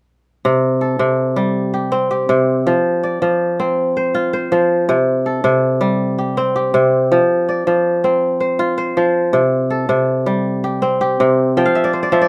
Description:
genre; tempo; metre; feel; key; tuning
west african traditional; 108 BPM (dotted quarters); 12/8; straight; unclear; A4 = 438 Hz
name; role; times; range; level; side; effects
kora; arpeggios; 0.4-12.3 s; C3 to G5; -16 LUFS; equal; none
room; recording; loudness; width
wet small room reverb, RT60 0.5 s; none; -16 LUFS; mono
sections
0.4-12.3 A section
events
kora fill 11.6-12.3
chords
0.4 C5; 2.7 F5; 4.9 C5; 7.1 F5; 9.3 C5; 11.6 F5

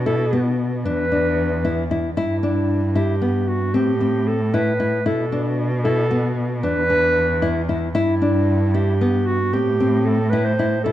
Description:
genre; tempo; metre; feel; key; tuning
contemporary instrumental, chamber music in an uneven meter; 228 BPM (eighths); 11/8; straight; unclear; A4 = 439 Hz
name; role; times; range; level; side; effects
warm cello; bass; 0.0-10.9 s; E2 to B2; -22 LUFS; right 1 dB; none
mellow clarinet; melody; 0.1-10.9 s; E4 to C5; -22 LUFS; right 2 dB; none
nylon-string guitar; arpeggios; 0.1-10.9 s; B3 to E4; -22 LUFS; left 3 dB; none
room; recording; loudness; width
light reverb; dark, warm production; -17 LUFS; side -12 dB against mid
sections
0.0-10.9 A section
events
none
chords
0.0 B7(no3); 0.9 E5; 2.2 G6; 3.7 Am7; 5.1 Bm7; 6.6 E5; 8.0 G6; 9.5 Am7

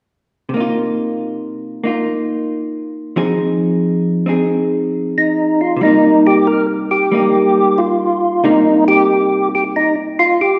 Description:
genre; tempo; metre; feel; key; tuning
jazz; 91 BPM; 4/4; swing 67% on 8ths; C minor; A4 = 440 Hz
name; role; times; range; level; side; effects
vintage hollow-body jazz guitar; accompaniment; 0.5-10.6 s; C3 to Ab4; -19 LUFS; equal; none
percussive tonewheel organ; melody; 5.2-10.6 s; Eb4 to Bb4; -14 LUFS; equal; slow rotary speaker, chorus vibrato
room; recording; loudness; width
wet recital hall reverb, RT60 1.7 s; recorded in a church or concert hall; -15 LUFS; mono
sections
0.5-5.8 A section; 5.8-10.6 B section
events
none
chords
0.5 Cm7; 3.2 Fm7; 5.8 Cm7

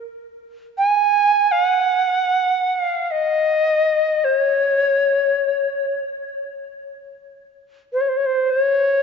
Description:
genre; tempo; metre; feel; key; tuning
world meditative, free-time meditation music; free time; none; none; unclear; A4 = 440 Hz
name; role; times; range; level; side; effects
reedy Native American-style cedar flute; solo; 0.8-9.0 s; C5 to Ab5; -17 LUFS; equal; tape echo
room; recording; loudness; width
wet church reverb, RT60 3.1 s; nothing above 7.6 kHz; -16 LUFS; side -6 dB against mid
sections
0.0-9.0 A section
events
none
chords
none

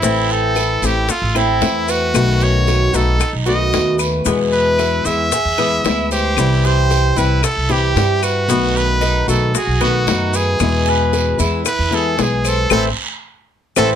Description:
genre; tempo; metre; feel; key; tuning
latin, Cuban son and guajira; 114 BPM; 4/4; straight; A minor; A4 = 438 Hz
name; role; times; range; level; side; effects
brilliant trumpet; melody; 0.0-13.9 s; E4 to E5; -19 LUFS; right 1 dB; none
flamenco guitar; accompaniment; 0.0-13.9 s; B2 to F#4; -20 LUFS; left 5 dB; none
Cuban tres; arpeggios; 0.0-13.9 s; B3 to C5; -21 LUFS; right 4 dB; none
upright bass; bass; 0.0-14.0 s; A1 to G2; -19 LUFS; right 1 dB; none
bongos; percussion; 0.0-13.9 s; none; -24 LUFS; left 8 dB; none
guiro; percussion; 0.0-13.9 s; none; -28 LUFS; right 6 dB; none
maracas; percussion; 0.0-13.9 s; none; -27 LUFS; left 10 dB; none
claves; percussion; 0.6-13.9 s; none; -24 LUFS; left 10 dB; none
room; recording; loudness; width
light reverb; close, detailed microphones; -14 LUFS; side -9 dB against mid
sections
0.0-14.0 A section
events
band accent 12.7-14.0; drum fill 13.8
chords
0.0 Am; 2.1 B7; 4.3 E; 6.4 C; 8.5 B7; 10.6 E; 12.7 Am

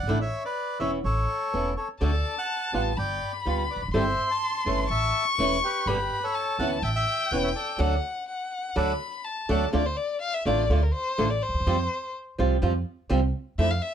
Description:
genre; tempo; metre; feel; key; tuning
tango; 124 BPM; 4/4; rubato; D major, D minor from 9.7 s; A4 = 440 Hz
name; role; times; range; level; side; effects
bandoneon; melody; 0.0-9.7 s; G4 to C6; -30 LUFS; equal; none
upright bass; bass; 0.0-13.8 s; E1 to F2; -27 LUFS; right 1 dB; none
flamenco guitar; accompaniment; 0.1-13.7 s; B2 to A4; -27 LUFS; right 2 dB; none
warm violin; second line; 2.0-13.9 s; Bb4 to C#6; -28 LUFS; left 3 dB; none
room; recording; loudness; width
light reverb; close, detailed microphones; -24 LUFS; side -9 dB against mid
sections
0.0-9.7 A section; 9.7-13.9 B section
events
band accent 7.8-9.7; violin solo 9.7-13.9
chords
0.1 Asus4; 1.0 Aadd9; 2.0 D; 3.0 G7; 3.9 C6/G; 4.9 A; 5.9 G; 6.8 Aadd9; 7.8 D; 9.7 Dm; 11.7 Fsus2

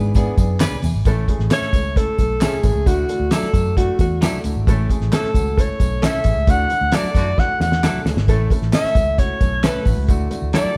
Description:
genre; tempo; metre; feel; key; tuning
uptempo 1960s-style soul; 133 BPM; 4/4; straight; A major; A4 = 438 Hz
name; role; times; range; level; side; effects
warm upright piano; accompaniment; 0.0-10.7 s; A2 to G#5; -29 LUFS; equal; none
vintage muted fingered electric bass; bass; 0.0-10.7 s; G#1 to G#2; -24 LUFS; equal; none
congas; percussion; 0.1-10.4 s; none; -38 LUFS; equal; none
tambourine and handclaps; percussion; 0.1-10.7 s; none; -37 LUFS; equal; none
cloth-damped thuddy drum kit; drums; 0.2-10.6 s; hi-hat, kick drum, snare drum; -21 LUFS; equal; none
semi-hollow electric guitar; stabs; 0.6-10.7 s; F#3 to B4; -29 LUFS; equal; spring reverb
mellow alto saxophone; melody; 1.5-10.8 s; F#4 to F#5; -24 LUFS; equal; none
warm horn section; second line; 6.9-7.3 s; D3 to F#4; -34 LUFS; equal; none
room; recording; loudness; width
moderate stone room reverb, RT60 1.0 s; band playing live in one room; -18 LUFS; mono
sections
0.0-1.1 A section; 1.1-10.8 B section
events
band accent 6.5-8.3; drum fill 7.4-8.3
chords
0.0 E7; 1.1 A; 2.9 Dadd9; 4.7 A; 6.5 Dadd9; 8.3 A; 10.1 Dadd9

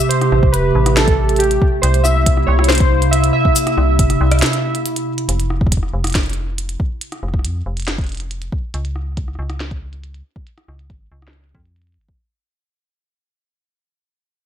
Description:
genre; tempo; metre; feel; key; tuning
IDM; 139 BPM; 4/4; straight; unclear; A4 = 438 Hz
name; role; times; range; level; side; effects
warbly lo-fi synth keys; melody; 0.0-4.8 s; G4 to E5; -19 LUFS; right 1 dB; chorus, ping-pong delay
warbly tape-like pad; sustained chords; 0.0-5.3 s; C3 to G4; -19 LUFS; right 1 dB; chorus, built-in reverb
glitchy drum kit; drums; 0.0-12.1 s; hi-hat, rim click, shaker, snare drum; -22 LUFS; equal; low-pass filter on hats, low-pass filter on snare, low-pass filter on perc
metallic FM bass; bass; 0.3-12.2 s; E1 to F2; -18 LUFS; equal; none
electronic kick drum; drums; 0.4-12.2 s; none; -17 LUFS; equal; none
room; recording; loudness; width
moderate plate reverb, RT60 1.1 s; dreamy mix soaked in reverb; -14 LUFS; side -10 dB against mid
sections
0.0-5.3 A section; 5.3-12.2 B section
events
break 4.4-5.3; fade-out 5.3-12.2; filter sweep on drum 5.3-12.2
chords
0.0 Am7; 1.8 C7; 5.3 N.C.; 8.7 Db

